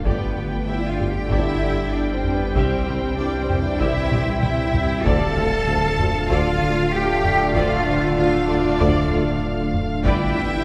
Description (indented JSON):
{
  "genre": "cinematic, hybrid orchestral and electronic film score",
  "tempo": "96 BPM",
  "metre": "4/4",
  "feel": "straight",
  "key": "D minor",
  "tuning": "A4 = 441 Hz",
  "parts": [
    { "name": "clear symphonic violin section", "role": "second line", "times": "0.0-10.6 s", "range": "B4 to A5", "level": "-32 LUFS", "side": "equal", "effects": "none" },
    { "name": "bright trombone section", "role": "sustained chords", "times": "0.0-10.6 s", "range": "D3 to A3", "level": "-32 LUFS", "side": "equal", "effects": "none" },
    { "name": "rich symphonic cello section", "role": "bass", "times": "0.0-10.6 s", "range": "B3 to A4", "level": "-27 LUFS", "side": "equal", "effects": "none" },
    { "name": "saturated sub bass", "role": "bass", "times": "0.0-10.6 s", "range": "D1 to C2", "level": "-31 LUFS", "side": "equal", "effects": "none" },
    { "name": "clear symphonic violin section", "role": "melody", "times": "0.1-10.6 s", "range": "F5 to G5", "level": "-34 LUFS", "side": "equal", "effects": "none" },
    { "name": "rich symphonic viola section", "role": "accompaniment", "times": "0.1-10.4 s", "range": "F4 to E5", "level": "-34 LUFS", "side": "equal", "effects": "none" },
    { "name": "clear French horn section", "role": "sustained chords", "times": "0.1-10.6 s", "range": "B3 to G4", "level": "-31 LUFS", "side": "equal", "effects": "none" },
    { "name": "ethereal airy pad", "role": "sustained chords", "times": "0.1-10.6 s", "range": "G3 to E5", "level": "-32 LUFS", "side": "equal", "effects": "none" },
    { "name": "rich symphonic double bass section", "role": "bass", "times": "0.1-10.4 s", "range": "G1 to D2", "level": "-31 LUFS", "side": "equal", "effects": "none" },
    { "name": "warm tuba", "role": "bass", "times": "0.1-10.5 s", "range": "G1 to D2", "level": "-31 LUFS", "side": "equal", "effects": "none" },
    { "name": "taiko ensemble", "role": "drums", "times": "0.1-10.6 s", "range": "none", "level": "-29 LUFS", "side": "equal", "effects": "none" },
    { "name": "riser", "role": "sound effects", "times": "10.0-10.6 s", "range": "none", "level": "barely audible", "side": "none", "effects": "none" }
  ],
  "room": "wet church reverb, RT60 2.8 s",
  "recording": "recorded in a church or concert hall",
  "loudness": "-20 LUFS",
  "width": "mono",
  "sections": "0.0-10.6 A section",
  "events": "drum fill 4.1-5.1",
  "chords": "0.1 G; 2.6 C; 5.1 Dm; 10.1 G",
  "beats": "| 0.05 0.68 1.30 1.93 | 2.55 3.18 3.80 4.43 | 5.05 5.68 6.30 6.93 | 7.55 8.18 8.80 9.43 | 10.05"
}